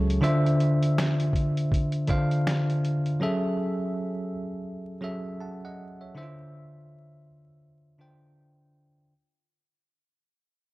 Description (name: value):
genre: lo-fi hip hop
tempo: 81 BPM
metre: 4/4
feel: swing 60% on 16ths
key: unclear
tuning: A4 = 439 Hz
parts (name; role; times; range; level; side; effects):
- bell-like tine electric piano; accompaniment; 0.0-9.1 s; D3 to A5; -25 LUFS; equal; medium stereo tremolo, cassette tape, low-pass filter
- lo-fi sampler-style drum kit; drums; 0.1-3.2 s; finger snaps, hi-hat, kick drum, snare drum; -29 LUFS; equal; none
room: light reverb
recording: dry, gritty hardware recording, transformer saturation, vinyl crackle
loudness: -24 LUFS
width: side -20 dB against mid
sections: 0.0-9.1 A section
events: fade-out 0.0-9.1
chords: 0.2 Dm9; 3.2 F#m9; 6.2 Dm9